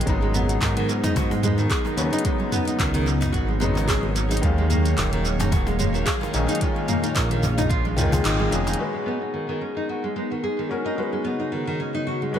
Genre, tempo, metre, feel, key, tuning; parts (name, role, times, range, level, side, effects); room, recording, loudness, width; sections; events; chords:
organic downtempo; 110 BPM; 4/4; swing 56% on 16ths; G# dorian; A4 = 439 Hz
felt-muted upright piano; accompaniment; 0.0-12.4 s; C#3 to E#5; -29 LUFS; left 4 dB; sidechain pumping, dub echo
airy breathy pad; sustained chords; 0.0-12.4 s; A#2 to E#5; -30 LUFS; right 1 dB; chorus, sidechain pumping
nylon-string guitar; arpeggios; 0.0-12.4 s; D#3 to G#4; -27 LUFS; right 1 dB; low-pass filter, tape echo
smooth synth bass; bass; 0.0-8.8 s; D#1 to G#2; -24 LUFS; equal; tube saturation
deep house drum kit; drums; 0.0-8.8 s; handclaps, hi-hat, shaker, toms; -28 LUFS; right 1 dB; low-pass filter on snare, low-pass filter on hats, low-pass filter on perc, low-pass filter on toms, low-pass filter on room, dub echo
electronic kick drum; drums; 0.1-7.8 s; -26 LUFS; equal
cajon; percussion; 1.0-8.8 s; -32 LUFS; left 2 dB; dub echo
light reverb; echo-heavy mix; -20 LUFS; side -9 dB against mid
0.0-8.8 A section; 8.8-12.4 B section
kick drops out 8.3-8.8; band accent 8.3; filter sweep on analog synth pad 8.8-12.4
0.1 G#m; 2.3 C#7sus4; 4.4 D#m7; 6.6 A#m7; 8.8 G#m; 11.0 C#7sus4